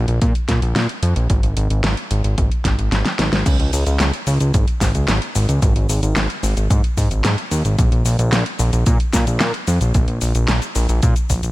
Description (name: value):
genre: synthwave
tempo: 111 BPM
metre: 4/4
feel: straight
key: Bb minor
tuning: A4 = 440 Hz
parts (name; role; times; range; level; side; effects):
- fat analog bass; bass; 0.0-11.5 s; Ab1 to Bb2; -17 LUFS; equal; sidechain pumping
- pop drum kit; drums; 0.1-11.5 s; cabasa, crash cymbal, handclaps, hi-hat, snare drum; -22 LUFS; equal; small room ambience
- electronic kick drum; drums; 0.2-11.4 s; none; -18 LUFS; equal; small room ambience
room: little or no reverb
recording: none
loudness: -15 LUFS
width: side -18 dB against mid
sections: 0.0-3.5 A section; 3.5-11.5 B section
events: drum fill 2.6-3.5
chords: none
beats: 0.22 0.76 | 1.30 1.84 2.38 2.92 | 3.46 4.00 4.54 5.08 | 5.62 6.16 6.70 7.25 | 7.79 8.33 8.87 9.41 | 9.95 10.49 11.03